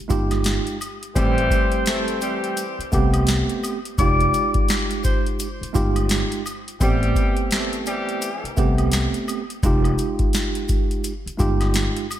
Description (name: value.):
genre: hip hop, boom-bap hip-hop.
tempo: 85 BPM.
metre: 4/4.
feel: swing 61% on 16ths.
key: A minor.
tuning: A4 = 438 Hz.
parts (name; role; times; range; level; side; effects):
mellow tine electric piano; accompaniment; 0.1-12.1 s; G3 to G4; -25 LUFS; right 3 dB; medium stereo tremolo, cassette tape, high-pass filter, low-pass filter.
upright bass; bass; 0.1-11.9 s; F1 to C2; -24 LUFS; left 1 dB; none.
booming analog drum machine; drums; 0.1-12.2 s; hi-hat, kick drum, snare drum; -22 LUFS; equal; none.
maracas and woodblock; percussion; 0.1-12.2 s; none; -37 LUFS; left 3 dB; none.
warm horn section; stabs; 1.1-8.5 s; E3 to A4; -28 LUFS; left 3 dB; high-pass filter, low-pass filter, diffuse ambient delay.
breathy tenor saxophone; melody; 1.2-5.2 s; C5 to D5; -26 LUFS; left 2 dB; high-pass filter, low-pass filter, diffuse ambient delay.
room: light reverb.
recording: none.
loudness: -19 LUFS.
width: side -12 dB against mid.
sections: 0.0-12.2 A section.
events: none.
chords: 0.0 Fm9; 1.2 Am9; 4.0 Fm9; 6.8 Am9; 9.6 Fm9.